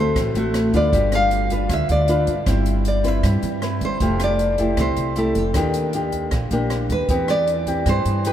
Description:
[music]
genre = bossa nova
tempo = 156 BPM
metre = 4/4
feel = straight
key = C major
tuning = A4 = 444 Hz
[part]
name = nylon-string guitar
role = melody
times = 0.0-8.3 s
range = G4 to F5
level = -22 LUFS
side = equal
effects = none
[part]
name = nylon-string guitar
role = accompaniment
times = 0.0-8.3 s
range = A2 to B4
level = -23 LUFS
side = left 1 dB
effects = none
[part]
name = upright bass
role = bass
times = 0.0-8.3 s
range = F1 to G2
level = -22 LUFS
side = equal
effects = none
[part]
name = open jazz drum kit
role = drums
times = 0.2-8.3 s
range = hi-hat, kick drum, rim click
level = -28 LUFS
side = equal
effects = none
[sound]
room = moderate cathedral reverb, RT60 5.5 s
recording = in a vast, echoing space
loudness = -17 LUFS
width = side -10 dB against mid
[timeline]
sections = 0.0-8.3 A section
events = none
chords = 0.0 D7; 0.9 G7; 2.5 Cmaj7/G; 4.0 Fmaj9; 5.5 Ebmaj7; 7.1 Cmaj7/E

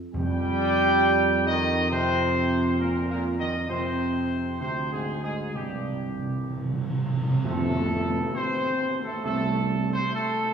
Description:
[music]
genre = classical, ceremonial fanfare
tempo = 67 BPM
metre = 4/4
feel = straight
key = F major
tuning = A4 = 439 Hz
[part]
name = warm trumpet section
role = melody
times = 0.1-10.5 s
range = G4 to G5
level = -28 LUFS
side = equal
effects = none
[part]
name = bright trombone section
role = sustained chords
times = 0.1-9.6 s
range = G2 to A3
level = -30 LUFS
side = right 3 dB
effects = none
[part]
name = dark French horn section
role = sustained chords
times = 0.1-10.5 s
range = G3 to G4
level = -30 LUFS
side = left 2 dB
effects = none
[part]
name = dark tuba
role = bass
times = 0.1-10.0 s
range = C2 to F2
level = -28 LUFS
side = right 2 dB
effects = none
[part]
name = timpani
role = percussion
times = 0.1-7.4 s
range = F2 to C3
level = -29 LUFS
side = right 2 dB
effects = none
[part]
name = cymbal swell and tam-tam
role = percussion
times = 3.7-10.5 s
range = none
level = -35 LUFS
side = left 1 dB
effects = none
[sound]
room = wet concert hall reverb, RT60 1.9 s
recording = studio reverb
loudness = -23 LUFS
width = side -6 dB against mid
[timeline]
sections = 0.0-7.4 A section; 7.4-10.5 B section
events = timpani fill 5.5-7.4; band accent 7.4-8.3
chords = 0.1 F9sus4; 3.7 Dm7b5; 5.5 C5; 7.4 F

